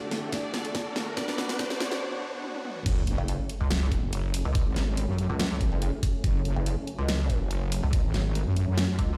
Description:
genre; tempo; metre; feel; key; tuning
heavy wobble dubstep; 142 BPM; 4/4; half-time; F# minor; A4 = 440 Hz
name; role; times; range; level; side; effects
rich studio violin section; melody; 0.0-2.0 s; D4 to D5; -39 LUFS; equal; digital delay
supersaw chords; sustained chords; 0.0-9.2 s; D2 to F#5; -41 LUFS; equal; phaser, sidechain pumping, low-pass filter
riser and sub drop; sound effects; 0.0-4.6 s; none; -38 LUFS; equal; none
dubstep drum kit; drums; 0.1-9.1 s; crash cymbal, hi-hat, snare drum, toms; -35 LUFS; equal; studio reverb
electronic kick drum; drums; 0.3-9.1 s; none; -30 LUFS; equal; studio reverb
wobble bass; bass; 2.9-9.0 s; F#1 to F#2; -29 LUFS; equal; chorus, overdrive
pulsing pluck wobble bass; bass; 3.2-9.2 s; F#1 to C#2; -29 LUFS; equal; distortion, chorus, overdrive
room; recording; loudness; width
light reverb; played on a big sound system in a bare room, stone room reverb, high-pass filter; -28 LUFS; mono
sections
0.0-2.9 A section; 2.9-9.2 B section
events
build-up 0.0-2.9; drum fill 0.0-2.0, 2.4-2.9; riser 0.0-2.0; filter sweep on supersaw synth 0.0-2.9; break 2.0-2.9; drop 2.9-9.2; impact 2.9-4.6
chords
0.0 D; 1.2 Bm; 2.9 F#m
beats
0.33 0.75 | 1.17 1.59 2.02 2.44 | 2.86 3.28 3.71 4.13 | 4.55 4.97 5.40 5.82 | 6.24 6.66 7.09 7.51 | 7.93 8.35 8.78

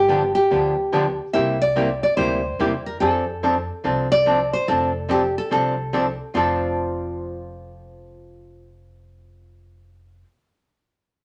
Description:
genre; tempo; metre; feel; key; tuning
country, western swing; 144 BPM; 4/4; swing 66% on 8ths; F major; A4 = 440 Hz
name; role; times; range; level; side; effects
nylon-string guitar; melody; 0.0-10.2 s; F4 to E5; -24 LUFS; equal; none
upright bass; bass; 0.0-10.2 s; F1 to F2; -34 LUFS; equal; none
archtop guitar, miked and amplified; accompaniment; 0.1-10.3 s; C3 to A4; -24 LUFS; equal; none
room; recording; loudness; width
moderate studio reverb, RT60 0.6 s; none; -21 LUFS; mono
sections
0.0-4.7 A section; 4.7-6.3 B section; 6.3-9.7 C section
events
none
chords
0.0 G7; 1.3 C9; 3.0 F6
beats
0.09 0.51 0.93 | 1.34 1.76 2.18 2.59 | 3.01 3.43 3.85 4.26 | 4.68 5.10 5.51 5.93 | 6.35 6.77 7.18 7.60 | 8.02 8.44 8.85 9.27

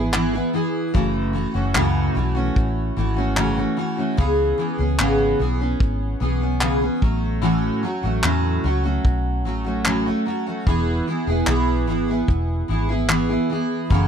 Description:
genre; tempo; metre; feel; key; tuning
acoustic pop; 74 BPM; 4/4; straight; E major; A4 = 440 Hz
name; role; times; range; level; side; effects
picked steel-string acoustic guitar; accompaniment; 0.0-14.1 s; F#2 to G#4; -21 LUFS; equal; double-tracked left and right
vintage muted fingered electric bass; bass; 0.0-14.1 s; E1 to E2; -23 LUFS; equal; none
soft brush drum kit; drums; 0.1-14.1 s; handclaps, kick drum; -20 LUFS; equal; none
room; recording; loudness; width
small room ambience; dry, close 1970s-style studio recording; -19 LUFS; side -8 dB against mid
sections
0.0-14.1 A section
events
none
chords
0.0 E; 0.9 F#m7; 4.2 C#m7; 7.0 A6; 10.7 E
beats
0.14 | 0.95 1.76 2.57 3.38 | 4.19 5.00 5.81 6.62 | 7.43 8.23 9.04 9.85 | 10.66 11.47 12.28 13.09 | 13.90

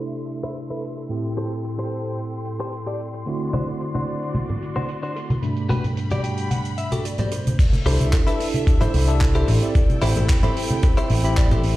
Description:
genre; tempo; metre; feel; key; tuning
nu-disco, nu disco; 111 BPM; 4/4; straight; unclear; A4 = 440 Hz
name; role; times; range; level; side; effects
tine electric piano; accompaniment; 0.0-11.8 s; G2 to B5; -26 LUFS; equal; medium stereo tremolo, sidechain pumping, analog delay
clear symphonic string section; sustained chords; 0.0-11.8 s; G3 to C6; -35 LUFS; equal; sidechain pumping
direct-recorded clean electric guitar; riff; 0.0-11.8 s; D4 to G5; -29 LUFS; left 2 dB; wide subtle chorus, low-pass filter, analog delay
compact cocktail drum kit; drums; 0.0-11.8 s; crash cymbal, handclaps, hi-hat; -33 LUFS; right 2 dB; studio reverb
congas and bongos; percussion; 3.5-11.6 s; none; -26 LUFS; equal; none
electronic kick drum; drums; 7.6-11.5 s; none; -18 LUFS; equal; studio reverb
picked electric bass with an envelope filter; bass; 7.9-11.7 s; A1 to C2; -19 LUFS; equal; none
room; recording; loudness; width
studio reverb; played on a big sound system in a bare room, stone room reverb, low-pass filter; -20 LUFS; side -16 dB against mid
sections
0.0-7.6 A section; 7.6-11.8 B section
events
filter sweep on clean electric guitar 0.0-7.6; filter sweep 0.0-7.6; clean electric guitar fill 6.0-7.6, 11.1-11.8; drop 7.6-11.8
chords
0.0 C6; 1.1 Am7; 3.3 D7; 5.4 Gmaj7; 7.6 C6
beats
0.02 0.56 | 1.10 1.64 2.18 2.72 | 3.27 3.81 4.35 4.89 | 5.43 5.97 6.51 7.05 | 7.59 8.13 8.67 9.21 | 9.75 10.29 10.83 11.37

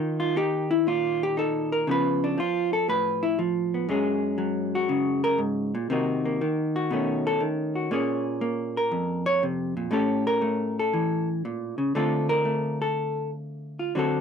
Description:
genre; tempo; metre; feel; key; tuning
solo jazz; 119 BPM; 4/4; swing 68% on 8ths; unclear; A4 = 440 Hz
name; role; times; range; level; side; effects
vintage hollow-body jazz guitar; solo; 0.0-14.2 s; F2 to Db5; -23 LUFS; equal; none
room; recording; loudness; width
light reverb; dry, close 1970s-style studio recording; -23 LUFS; side -6 dB against mid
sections
0.0-11.9 A section; 11.9-14.2 A section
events
hollow-body jazz guitar solo 0.0-14.2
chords
0.0 Ebsus2; 1.9 Dbaug7; 3.9 Gbadd9; 5.9 Cm7b5; 6.9 B9; 7.9 Bbm7; 9.9 A7; 11.9 Dm7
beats
0.35 0.86 1.36 | 1.87 2.37 2.88 3.38 | 3.88 4.39 4.89 5.40 | 5.90 6.40 6.91 7.41 | 7.91 8.42 8.92 9.42 | 9.93 10.43 10.93 11.43 | 11.93 12.44 12.94 13.44 | 13.94

